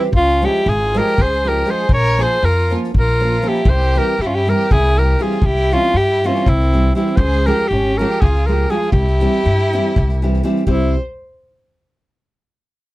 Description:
balkan folk, Balkan wedding band; 239 BPM (eighths); 7/8; straight; C phrygian dominant; A4 = 440 Hz
edgy alto saxophone; melody; 0.0-10.9 s; E4 to Db5; -18 LUFS; equal
clear violin; second line; 0.0-10.9 s; C4 to C5; -24 LUFS; right 1 dB
nylon-string guitar; accompaniment; 0.0-10.9 s; E3 to Bb4; -20 LUFS; right 1 dB
street-band drum kit; percussion; 0.0-10.9 s; kick drum, snare drum; -17 LUFS; equal
upright bass; bass; 0.1-10.9 s; Ab1 to G2; -17 LUFS; equal
little or no reverb; dry, close 1970s-style studio recording; -13 LUFS; side -18 dB against mid
0.0-10.7 A section; 10.7-12.4 B section
0.1 Db; 1.9 Bbm; 3.7 C; 7.2 Db; 8.9 C

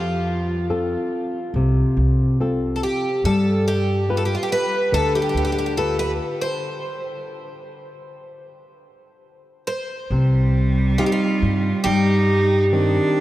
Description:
fado-style ballad; 70 BPM; 4/4; rubato; C minor from 10.1 s; A4 = 440 Hz
picked twelve-string acoustic guitar; melody; 0.0-13.2 s; F4 to C5; -24 LUFS; right 1 dB
nylon-string guitar; accompaniment; 0.0-13.2 s; C3 to B4; -23 LUFS; left 1 dB
upright bass; bass; 0.0-13.0 s; C2 to G2; -22 LUFS; equal
rich cello; second line; 10.1-13.2 s; G3 to Eb4; -23 LUFS; right 4 dB
moderate cathedral reverb, RT60 5.9 s; in a vast, echoing space; -18 LUFS; side -15 dB against mid
0.0-10.1 A section; 10.1-13.2 B section
stop 6.6-10.1
0.0 F; 3.2 G7; 6.6 N.C.; 10.1 Cm

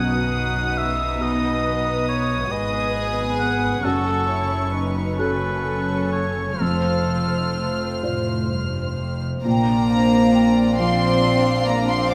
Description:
cinematic, emotional film score for orchestra; 42-47 BPM (dotted quarters); 6/8; rubato; A4 = 440 Hz
warm symphonic violin section; melody; 0.0-12.1 s; Bb5 to F6; -31 LUFS; equal
clear oboe; second line; 0.0-8.0 s; A4 to F#5; -28 LUFS; equal
warm symphonic violin section; second line; 0.0-12.1 s; C#4 to D5; -34 LUFS; equal
dark symphonic viola section; accompaniment; 0.0-12.1 s; A3 to C#5; -31 LUFS; equal
felt-muted upright piano; accompaniment; 0.0-12.1 s; B1 to C5; -29 LUFS; equal
concert harp; arpeggios; 0.0-12.1 s; F2 to C6; -31 LUFS; equal
rich symphonic cello section; bass; 0.0-12.1 s; F2 to C4; -27 LUFS; equal
warm symphonic double bass section; bass; 0.0-12.1 s; F1 to B1; -30 LUFS; equal
mellow hollow large flute ensemble; second line; 9.5-12.1 s; F5 to G5; -30 LUFS; equal
dark French horn section; sustained chords; 9.5-12.1 s; Bb3 to C4; -27 LUFS; equal
moderate scoring stage reverb, RT60 1.6 s; -21 LUFS; mono
0.0-9.5 A section; 9.5-12.1 A section
0.0 B; 3.8 F#m; 6.6 F7; 9.5 Bbadd9

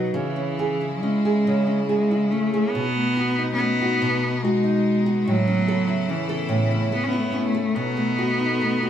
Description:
celtic folk, Celtic slow air; 71 BPM; 3/4; rubato; A4 = 441 Hz
rich cello; melody; 0.0-8.9 s; E3 to C#4; -22 LUFS; equal
nylon-string guitar; accompaniment; 0.0-8.9 s; A2 to A4; -24 LUFS; equal
rich chamber string section; sustained chords; 0.0-8.9 s; B2 to G#4; -31 LUFS; left 3 dB
moderate studio ambience, RT60 0.4 s; band playing live in one room; -20 LUFS; side -9 dB against mid
0.0-8.9 A section
0.2 C#m; 2.7 B7; 5.3 A; 7.8 B7

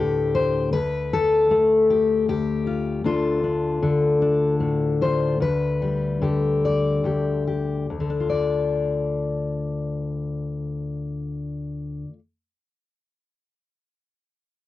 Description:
folk, solo fingerstyle acoustic guitar; 46-52 BPM (dotted quarters); 6/8; straight; D dorian; A4 = 438 Hz
fingerpicked steel-string acoustic guitar; solo; 0.0-12.2 s; D2 to D5; -20 LUFS; left 3 dB; cassette tape
light reverb; home recording on cassette; -20 LUFS; side -14 dB against mid
0.0-5.4 A section; 5.4-7.9 B section; 7.9-10.5 C section
slowing down 3.0-7.9
0.0 Dm; 5.4 G/D; 7.9 Dm

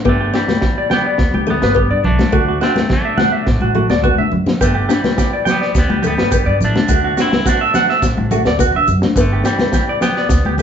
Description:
highlife guitar band; 105 BPM; 4/4; straight; G major; A4 = 440 Hz
picked steel-string acoustic guitar; accompaniment; 0.0-10.6 s; A3 to D4; -20 LUFS; left 3 dB
clean electric guitar; melody; 0.1-10.6 s; D3 to E4; -22 LUFS; left 1 dB
clean electric guitar; arpeggios; 0.1-10.6 s; F#4 to G5; -18 LUFS; right 3 dB
upright bass; bass; 0.1-10.6 s; G1 to D3; -19 LUFS; equal
crunchy breakbeat drum kit; drums; 0.1-10.4 s; kick drum, snare drum; -18 LUFS; equal
congas; percussion; 0.5-10.6 s; -22 LUFS; left 2 dB
maracas; percussion; 4.6-10.6 s; -33 LUFS; left 8 dB
moderate large studio reverb, RT60 0.9 s; band playing live in one room, nothing above 7.9 kHz; -13 LUFS; side -8 dB against mid
0.0-10.6 A section
drum fill 3.9-4.6
0.1 G; 2.3 Dadd9; 4.6 G; 6.9 Dadd9; 9.2 G

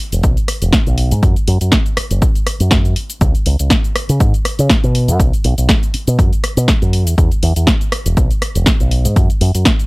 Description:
nu-disco, nu disco; 121 BPM; 4/4; swing 55% on 16ths; A4 = 440 Hz
fingered electric bass with an envelope filter; bass; 0.1-9.6 s; E1 to C#3; -14 LUFS; equal
house drum kit; drums; 0.1-9.9 s; hi-hat, rim click, shaker, snare drum; -18 LUFS; equal; small room ambience
electronic kick drum; drums; 0.2-9.8 s; -14 LUFS; equal; small room ambience
little or no reverb; dry, gritty hardware recording; -12 LUFS; side -25 dB against mid
0.0-9.9 A section

